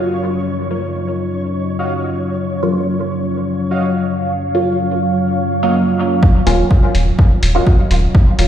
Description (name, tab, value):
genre	dub techno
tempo	125 BPM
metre	4/4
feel	straight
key	Eb minor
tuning	A4 = 443 Hz
part	deep dark ambient pad	sustained chords	0.0-8.5 s	Gb3 to F5	-18 LUFS	equal	chorus, built-in reverb, sidechain pumping
part	filtered dub chord stab	stabs	0.0-8.5 s	Gb3 to F4	-20 LUFS	equal	phaser, vintage 12-bit sampler grit, sidechain pumping, dub echo
part	flickering grainy texture	texture	0.0-6.2 s	Db5	-28 LUFS	left 1 dB	built-in reverb, sidechain pumping
part	warbly lo-fi synth keys	riff	1.8-7.7 s	Gb4 to F5	-27 LUFS	right 2 dB	chorus, vintage 12-bit sampler grit, sidechain pumping, dub echo
part	electronic kick drum	drums	6.2-8.2 s	none	-10 LUFS	equal	small room ambience
part	pure sine sub bass	bass	6.5-8.5 s	Eb1	-14 LUFS	equal	sidechain pumping
part	electronic hi-hat	drums	6.5-8.5 s	none	-25 LUFS	left 1 dB	overdrive, small room ambience
room	moderate echo chamber reverb, RT60 1.4 s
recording	played on a big sound system in a bare room, large studio reverb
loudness	-14 LUFS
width	side -10 dB against mid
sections	0.0-6.2 A section; 6.2-8.5 B section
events	filter sweep on synth stab 0.0-6.2; filter sweep on ambient pad 0.0-6.2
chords	0.0 Ebm9